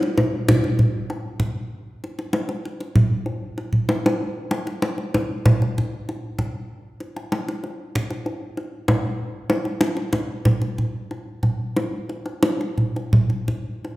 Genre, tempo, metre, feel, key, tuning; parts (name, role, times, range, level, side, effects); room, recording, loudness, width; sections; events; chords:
gamelan; 96 BPM; 4/4; uneven beats
kendang; percussion; 0.0-13.9 s; -21 LUFS; equal
wet recital hall reverb, RT60 1.7 s; -21 LUFS; side -17 dB against mid
0.0-14.0 A section
drum fill 3.8-4.2